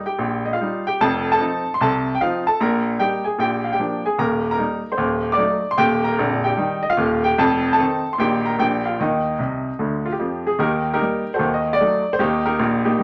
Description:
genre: jazz, stride piano.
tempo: 150 BPM.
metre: 4/4.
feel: swing 63% on 8ths.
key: Eb major.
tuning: A4 = 440 Hz.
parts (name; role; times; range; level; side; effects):
clear baby grand piano; solo; 0.0-13.0 s; Bb0 to D6; -20 LUFS; equal; none.
room: wet studio reverb, RT60 0.7 s.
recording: none.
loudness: -20 LUFS.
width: mono.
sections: 0.0-10.6 A section; 10.6-13.0 A section.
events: grand piano fill 9.4-10.6.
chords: 0.0 Eb; 1.0 F7; 2.6 Eb/Bb; 3.4 Bb; 4.2 Eb; 5.0 Ebdim7; 5.8 Eb; 7.4 F7; 8.2 Eb/Bb; 8.6 Bb; 9.0 F7sus2/C; 10.6 Eb; 11.4 Ebdim; 12.2 Eb.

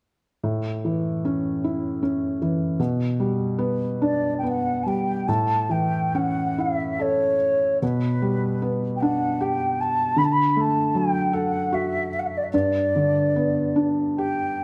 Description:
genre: celtic folk, Celtic slow air.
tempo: 69-78 BPM.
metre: 3/4.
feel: rubato.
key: A mixolydian.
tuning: A4 = 439 Hz.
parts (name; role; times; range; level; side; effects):
felt-muted upright piano; accompaniment; 0.4-14.6 s; G2 to A4; -25 LUFS; equal; none.
mellow wooden flute; melody; 4.0-14.6 s; B4 to B5; -26 LUFS; equal; none.
room: moderate concert hall reverb, RT60 1.8 s.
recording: close, detailed microphones.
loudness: -23 LUFS.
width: mono.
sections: 0.4-5.3 A section; 5.3-14.6 B section.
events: none.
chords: 0.4 A; 2.8 G/B; 5.3 A; 7.8 G/B; 10.2 D; 12.5 G.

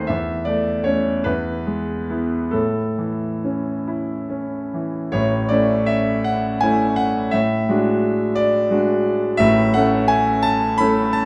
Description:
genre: classical, romantic nocturne for solo piano.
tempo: 44-59 BPM (dotted quarters).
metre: 12/8.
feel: rubato.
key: A major.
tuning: A4 = 440 Hz.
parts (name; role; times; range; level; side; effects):
bright concert grand piano; solo; 0.0-11.3 s; A1 to B5; -20 LUFS; equal; none.
room: wet recital hall reverb, RT60 1.4 s.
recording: faint mains hum.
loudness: -20 LUFS.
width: mono.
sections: 0.0-5.1 A section; 5.1-11.3 B section.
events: none.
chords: 0.1 A/E; 1.3 E; 2.5 A; 7.3 E9/A; 9.4 A.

